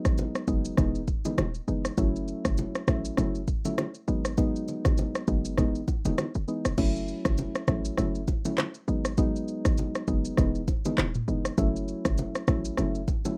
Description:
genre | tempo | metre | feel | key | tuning
afrobeats | 100 BPM | 4/4 | swing 58% on 16ths | F# dorian | A4 = 440 Hz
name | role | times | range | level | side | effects
soft electric-piano-like synth keys | accompaniment | 0.0-13.4 s | E3 to E4 | -33 LUFS | equal | chorus, plate reverb
short 808-style bass | bass | 0.1-13.1 s | D#1 to A1 | -33 LUFS | equal | none
afro-pop drum kit | drums | 0.1-13.4 s | crash cymbal, handclaps, kick drum, rim click, shaker, toms | -31 LUFS | equal | none
bongos and congas | percussion | 0.2-13.4 s | none | -37 LUFS | equal | none
room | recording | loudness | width
light reverb | rough home demo mix | -28 LUFS | mono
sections
0.0-6.8 A section; 6.8-13.4 B section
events
none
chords
0.0 G#m7; 0.8 Emaj7; 2.0 F#m7; 4.1 G#m7; 5.6 Emaj7; 6.8 F#m7; 8.9 G#m7; 10.4 Emaj7; 11.6 F#m7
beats
0.18 0.78 1.38 | 1.98 2.58 3.18 3.78 | 4.38 4.98 5.58 6.18 | 6.78 7.38 7.98 8.58 | 9.18 9.78 10.38 10.98 | 11.58 12.18 12.78

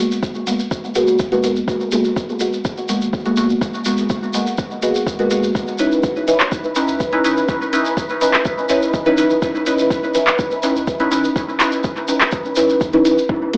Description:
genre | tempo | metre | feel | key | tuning
dub techno | 124 BPM | 4/4 | straight | unclear | A4 = 439 Hz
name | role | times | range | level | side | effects
deep mellow chord stab | stabs | 0.0-13.6 s | G#3 to B4 | -19 LUFS | equal | chorus, phaser, sidechain pumping, cassette tape, dub echo
shekere | percussion | 0.1-13.3 s | none | -31 LUFS | equal | none
electronic kick drum | drums | 0.2-13.4 s | none | -27 LUFS | equal | overdrive, cassette tape
deep house drum kit | drums | 0.5-13.6 s | handclaps, hi-hat | -22 LUFS | equal | overdrive, cassette tape, dub echo
warm sub bass | bass | 0.7-13.4 s | F#1 to E2 | -42 LUFS | equal | tube saturation, sidechain pumping
wind-like tuned noise texture | texture | 6.1-13.3 s | B4 | -28 LUFS | equal | built-in reverb, sidechain pumping, cassette tape
room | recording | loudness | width
moderate studio reverb, RT60 0.5 s | home recording on cassette, vinyl crackle, AM radio sound | -18 LUFS | mono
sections
0.0-13.3 A section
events
none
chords
0.0 G#m9; 5.5 C#m9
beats
0.23 0.71 1.20 | 1.68 2.16 2.65 3.13 | 3.62 4.10 4.58 5.07 | 5.55 6.03 6.52 7.00 | 7.49 7.97 8.45 8.94 | 9.42 9.90 10.39 10.87 | 11.36 11.84 12.32 12.81 | 13.29

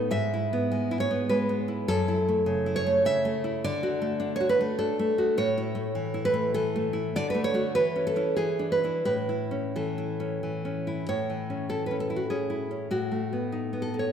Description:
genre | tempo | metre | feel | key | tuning
romantic piece for solo classical guitar | 88-105 BPM | 3/4 | rubato | A major | A4 = 440 Hz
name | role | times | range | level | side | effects
nylon-string guitar | solo | 0.0-14.1 s | F#2 to E5 | -25 LUFS | equal | none
room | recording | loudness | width
wet concert hall reverb, RT60 2.4 s | recorded in a church or concert hall | -25 LUFS | side -8 dB against mid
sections
0.0-11.1 A section; 11.1-14.1 B section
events
none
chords
0.1 E/G#; 1.9 F#m7; 3.6 D; 5.4 A; 7.1 D; 7.7 A/E; 8.4 E7; 9.1 A; 12.9 B7/A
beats
| 0.12 0.71 1.30 | 1.87 2.46 3.03 | 3.61 4.18 4.76 | 5.35 5.93 6.53 | 7.13 7.74 8.38 | 9.06 9.74 10.41 | 11.06 11.68 12.30 | 12.91 13.52 14.12

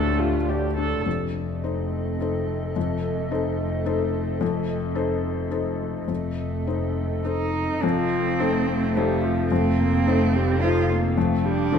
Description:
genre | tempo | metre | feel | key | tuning
neoclassical piano and strings | 107 BPM | 3/4 | uneven beats, rubato | unclear | A4 = 439 Hz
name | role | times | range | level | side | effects
muted cello | second line | 0.0-11.8 s | A3 to F4 | -29 LUFS | right 6 dB | none
felt-muted upright piano | accompaniment | 0.0-11.8 s | D2 to D5 | -26 LUFS | left 6 dB | none
muted viola | accompaniment | 0.0-1.1, 7.8-11.8 s | F3 to A4 | -26 LUFS | right 2 dB | none
warbly tape-like pad | sustained chords | 0.0-11.8 s | C4 to F5 | -31 LUFS | right 1 dB | chorus, built-in reverb
muted double bass | bass | 0.0-11.8 s | F1 to D2 | -28 LUFS | equal | none
room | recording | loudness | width
moderate scoring stage reverb, RT60 1.6 s | minimal, uncompressed stereo recording | -21 LUFS | side -7 dB against mid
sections
0.0-1.1 A section; 1.1-7.8 B section; 7.8-11.8 C section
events
none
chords
0.0 Dsus4; 1.1 F7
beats
0.49 | 1.06 1.64 2.20 | 2.76 3.31 3.86 | 4.41 4.96 5.51 | 6.09 6.67 7.25 | 7.83 8.39 8.95 | 9.50 10.06 10.61 | 11.16 11.70

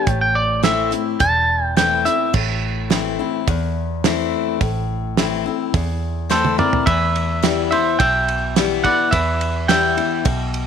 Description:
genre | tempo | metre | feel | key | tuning
honky-tonk and classic country | 106 BPM | 4/4 | straight | E minor from 6.9 s | A4 = 440 Hz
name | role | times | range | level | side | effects
twangy electric guitar | melody | 0.0-2.3, 6.3-10.7 s | A4 to A5 | -18 LUFS | right 1 dB | none
picked steel-string acoustic guitar | accompaniment | 0.0-10.7 s | E2 to E4 | -22 LUFS | left 12 dB | none
vintage muted fingered electric bass | bass | 0.1-10.7 s | E1 to E2 | -24 LUFS | right 2 dB | none
damped 70s drum kit | drums | 0.1-10.7 s | crash cymbal, hi-hat, kick drum, ride cymbal, snare drum, toms | -22 LUFS | right 6 dB | none
room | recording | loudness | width
light reverb, small room ambience | 1960s-style stereo with parts hard left and right | -16 LUFS | side -7 dB against mid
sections
0.0-2.3 A section; 2.3-6.9 B section; 6.9-10.7 C section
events
clean electric guitar solo 0.0-2.3; drum fill 6.3-6.9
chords
0.1 Am; 6.9 Em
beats
| 0.07 0.64 1.21 1.77 | 2.34 2.91 3.47 4.04 | 4.61 5.17 5.74 6.30 | 6.87 7.43 8.00 8.56 | 9.13 9.70 10.26

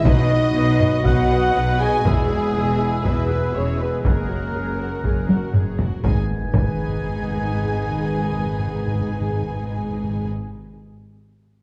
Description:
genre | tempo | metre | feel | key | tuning
cinematic, epic orchestral film score | 120 BPM | 4/4 | straight | G# minor | A4 = 440 Hz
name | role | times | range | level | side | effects
warm symphonic violin section | melody | 0.0-10.3 s | G#4 to G#5 | -35 LUFS | equal | none
mellow concert flute | second line | 0.0-10.3 s | G#4 to G#5 | -36 LUFS | equal | none
rich symphonic violin section | second line | 0.0-10.3 s | G#4 to G#5 | -40 LUFS | equal | none
rich symphonic viola section | accompaniment | 0.0-10.3 s | D#4 to D#5 | -34 LUFS | equal | none
clear woodwind section | sustained chords | 0.0-9.8 s | B3 to G#5 | -36 LUFS | equal | none
dark French horn section | sustained chords | 0.0-9.8 s | G#3 to G#4 | -30 LUFS | equal | none
mellow trombone section | sustained chords | 0.0-9.8 s | B2 to B3 | -36 LUFS | equal | none
dark trumpet section | stabs | 0.0-10.3 s | G#4 to G#5 | -30 LUFS | equal | none
warm symphonic cello section | bass | 0.0-10.3 s | E2 to B2 | -29 LUFS | equal | none
bright symphonic double bass section | bass | 0.1-10.3 s | E1 to B1 | -28 LUFS | equal | none
taiko ensemble | drums | 0.1-7.0 s | none | -23 LUFS | equal | none
timpani | percussion | 6.0-10.3 s | G#2 | -31 LUFS | equal | none
impact | sound effects | 6.0-8.0 s | none | -33 LUFS | equal | none
room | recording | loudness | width
moderate scoring stage reverb, RT60 1.6 s | dark, warm production | -21 LUFS | mono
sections
0.0-6.0 A section; 6.0-10.0 B section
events
drum fill 5.3-6.0; impact 6.0-8.0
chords
0.1 B; 2.0 E; 4.0 F#add9; 6.0 G#m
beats
| 0.05 0.55 1.05 1.55 | 2.05 2.54 3.04 3.54 | 4.04 4.54 5.04 5.54 | 6.04 6.54 7.04 7.54 | 8.04 8.54 9.03 9.53

